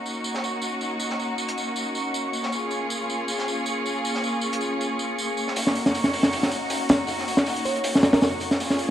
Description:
drum and bass, jungle; 158 BPM; 4/4; straight; Eb minor; A4 = 439 Hz
warm symphonic string section; sustained chords; 0.0-8.9 s; Bb3 to Ab4; -27 LUFS; left 1 dB
wind-like tuned noise texture; texture; 0.0-8.9 s; Db6 to Db7; -32 LUFS; right 2 dB; built-in reverb
crunchy breakbeat drum kit; drums; 0.1-8.9 s; hi-hat, snare drum, tambourine; -33 LUFS; right 1 dB; high-pass filter on hats, high-pass filter on snare, high-pass filter on perc, high-pass filter on room
crunchy breakbeat drum kit; drums; 5.6-8.9 s; hi-hat, snare drum; -21 LUFS; equal
bell-like FM electric piano; melody; 7.7-8.3 s; Bb4 to Db5; -29 LUFS; right 2 dB; chorus, dub echo
moderate echo chamber reverb, RT60 2.2 s; dark, warm production, vinyl crackle; -22 LUFS; side -11 dB against mid
0.0-8.9 A section
0.0 Ebm7; 2.5 Bbm7; 5.6 Ebm7
0.25 0.63 | 1.01 1.39 1.77 2.15 | 2.52 2.90 3.29 3.67 | 4.04 4.42 4.80 5.18 | 5.56 5.94 6.32 6.70 | 7.08 7.46 7.84 8.22 | 8.60

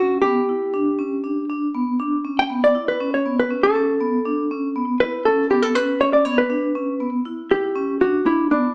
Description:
progressive instrumental, progressive; 239 BPM (eighths); 9/8; straight; A4 = 440 Hz
hollow-body jazz guitar; melody; 0.0-8.7 s; D4 to G5; -21 LUFS; equal
vibraphone with medium mallets; arpeggios; 0.0-8.7 s; B3 to E4; -25 LUFS; equal
moderate large studio reverb, RT60 1.0 s; band playing live in one room, small speaker sound; -20 LUFS; mono
0.0-7.5 A section; 7.5-8.7 B section
hollow-body jazz guitar solo 0.0-7.5
0.0 Bm11
0.24 0.49 | 0.74 0.99 1.24 1.49 1.74 1.99 2.24 2.50 2.75 | 3.00 3.25 3.50 3.75 4.00 4.25 4.50 4.75 5.00 | 5.25 5.50 5.75 6.00 6.25 6.50 6.75 7.00 7.25 | 7.50 7.75 8.01 8.26 8.51

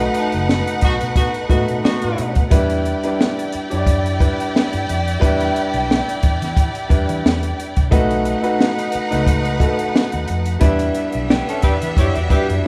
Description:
lush 1970s-style soul; 89 BPM; 4/4; swing 54% on 16ths; A4 = 436 Hz
rich studio violin section; second line; 0.0-12.7 s; G3 to G5; -27 LUFS; equal
warm concert grand piano; accompaniment; 0.0-12.7 s; G3 to D5; -24 LUFS; equal
vintage muted fingered electric bass; bass; 0.0-12.6 s; F#1 to E3; -26 LUFS; equal
compact cocktail drum kit; drums; 0.1-12.6 s; hi-hat, kick drum, snare drum; -20 LUFS; equal
vibraphone with hard mallets; texture; 0.2-7.8 s; G5 to A5; -34 LUFS; equal
warm horn section; stabs; 0.8-2.3, 11.6-12.7 s; B3 to G4; -26 LUFS; equal
direct-recorded clean electric guitar; riff; 11.3-12.7 s; B3 to D5; -27 LUFS; equal
light reverb; band playing live in one room; -18 LUFS; mono
0.0-12.7 A section
band accent 0.0-2.5, 10.6-12.7
0.0 B7; 2.5 Em7; 7.9 B7; 10.6 Em7
0.49 1.17 1.85 | 2.52 3.20 3.87 4.55 | 5.22 5.90 6.57 7.25 | 7.92 8.60 9.27 9.94 | 10.62 11.29 11.97 12.64

